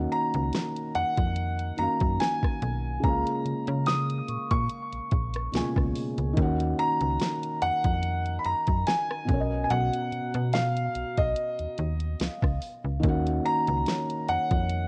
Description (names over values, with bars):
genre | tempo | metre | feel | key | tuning
contemporary R&B | 72 BPM | 4/4 | swing 54% on 16ths | Eb minor | A4 = 440 Hz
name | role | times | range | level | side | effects
felt-muted upright piano | accompaniment | 0.0-14.9 s | Cb3 to Ab5 | -34 LUFS | equal | none
slap-like FM bass | bass | 0.0-14.9 s | Bb1 to Db3 | -32 LUFS | equal | none
vibraphone with soft mallets | texture | 0.0-14.9 s | F#4 to Db6 | -45 LUFS | equal | analog delay
clear concert grand piano | melody | 0.1-14.9 s | D#5 to Eb6 | -31 LUFS | equal | cassette tape, analog delay
smooth R&B drum kit | drums | 0.1-14.9 s | hi-hat, kick drum, rim click, snare drum | -30 LUFS | equal | vintage 12-bit sampler grit, cassette tape
room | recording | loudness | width
small room ambience | home recording on cassette | -27 LUFS | mono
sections
0.0-6.4 A section; 6.4-14.9 A section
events
none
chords
0.0 Ebm7; 3.0 Bbm7/Db; 6.4 Ebm7; 9.3 Bmaj7